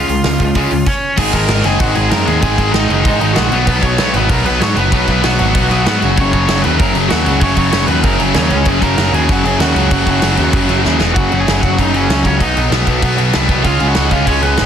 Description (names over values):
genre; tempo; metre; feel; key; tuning
punk rock; 192 BPM; 4/4; straight; F# major; A4 = 441 Hz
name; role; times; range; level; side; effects
smooth overdriven lead guitar; melody; 0.0-14.7 s; B3 to C#6; -19 LUFS; right 2 dB; none
distorted electric guitar; riff; 0.0-14.7 s; E2 to C#4; -20 LUFS; right 15 dB; distortion
overdriven electric guitar; riff; 0.0-14.7 s; E2 to C#4; -17 LUFS; left 8 dB; none
growling picked electric bass; bass; 0.0-14.7 s; E1 to G#2; -17 LUFS; equal; overdrive
big rock drum kit; drums; 0.1-14.7 s; crash cymbal, hi-hat, kick drum, snare drum; -17 LUFS; equal; none
high-gain distorted guitar; riff; 1.2-11.0, 13.6-14.7 s; F#2 to C#4; -22 LUFS; right 2 dB; distortion
room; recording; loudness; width
little or no reverb; dense, heavily limited modern master; -11 LUFS; side -8 dB against mid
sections
0.0-1.2 A section; 1.2-11.2 B section; 11.2-14.7 C section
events
drum fill 10.8-11.2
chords
0.0 C#; 1.2 G#5; 3.5 B5; 6.0 F#5; 6.2 F#; 8.5 C#5; 8.7 F#; 11.0 E5; 11.2 F#5; 12.4 B; 13.6 C#